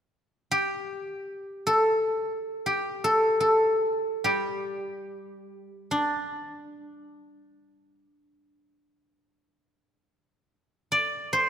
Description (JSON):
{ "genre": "chinese traditional, Chinese solo plucked strings", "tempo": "free time", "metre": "none", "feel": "none", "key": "unclear", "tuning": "A4 = 441 Hz", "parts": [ { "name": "guzheng", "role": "solo", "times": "0.5-11.5 s", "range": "G3 to D5", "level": "-25 LUFS", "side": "equal", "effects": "none" } ], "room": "light reverb", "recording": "none", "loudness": "-24 LUFS", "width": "side -9 dB against mid", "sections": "0.0-11.5 A section", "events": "none", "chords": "none" }